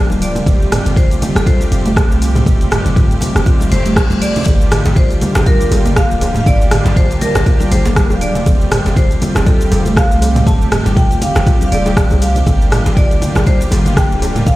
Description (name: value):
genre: afro house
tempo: 120 BPM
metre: 4/4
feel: swing 56% on 16ths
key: unclear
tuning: A4 = 440 Hz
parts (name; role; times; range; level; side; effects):
- marimba with hard mallets; melody; 0.0-14.6 s; A4 to A5; -22 LUFS; equal; dub echo
- bright studio string section; sustained chords; 0.0-14.6 s; C3 to A5; -26 LUFS; equal; sidechain pumping
- mellow synth brass; stabs; 0.0-14.6 s; G3 to G4; -23 LUFS; right 2 dB; chorus, sidechain pumping, dub echo
- warm 808-style bass; bass; 0.0-14.6 s; D1 to C2; -16 LUFS; equal; sidechain pumping
- buzzing kalimba; arpeggios; 0.1-14.6 s; D3 to F4; -22 LUFS; equal; sidechain pumping, dub echo
- afro-pop drum kit; drums; 0.1-14.6 s; hi-hat, rim click, shaker, toms; -20 LUFS; equal; small room ambience
- congas; percussion; 0.1-14.4 s; none; -21 LUFS; left 2 dB; none
- electronic kick drum; drums; 0.5-14.6 s; none; -12 LUFS; equal; small room ambience
- reverse cymbal; sound effects; 3.6-4.5 s; none; -27 LUFS; left 4 dB; none
- djembe; percussion; 4.5-14.6 s; none; -23 LUFS; right 1 dB; none
room: small room ambience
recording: played on a big sound system in a bare room, stone room reverb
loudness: -10 LUFS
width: side -17 dB against mid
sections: 0.0-14.6 A section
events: reverse cymbal 3.6-4.5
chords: 0.5 Fadd9; 4.5 Gm7; 8.5 Fadd9; 12.5 Gm7